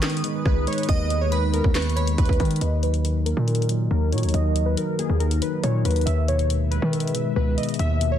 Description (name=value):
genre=hip hop, trap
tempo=139 BPM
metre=4/4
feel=half-time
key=Eb phrygian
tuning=A4 = 437 Hz
part: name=glassy digital keys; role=melody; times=0.0-8.2 s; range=Ab4 to E5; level=-28 LUFS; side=equal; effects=chorus, low-pass filter, ping-pong delay
part: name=glassy synth bell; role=second line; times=0.0-2.2 s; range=Cb6 to Eb6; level=-34 LUFS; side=right 2 dB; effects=chorus, phaser, ping-pong delay
part: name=mellow tine electric piano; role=accompaniment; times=0.0-8.2 s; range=B2 to Eb4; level=-28 LUFS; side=left 1 dB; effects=medium stereo tremolo, low-pass filter
part: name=dark analog pad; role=sustained chords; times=0.0-8.2 s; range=Gb3 to E5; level=-33 LUFS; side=left 1 dB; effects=chorus, low-pass filter
part: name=hard-hitting 808-style bass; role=bass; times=0.0-8.2 s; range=Db2 to Eb3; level=-22 LUFS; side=equal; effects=none
part: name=trap drum kit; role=drums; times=0.0-8.1 s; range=handclaps, hi-hat, kick drum, rim click, snare drum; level=-26 LUFS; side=equal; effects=none
room=light reverb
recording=dense, heavily limited modern master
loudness=-20 LUFS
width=side -10 dB against mid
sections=0.0-2.6 A section; 2.6-8.2 B section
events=filter sweep 2.6-8.2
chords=0.0 Abm; 2.6 Ebm; 6.1 E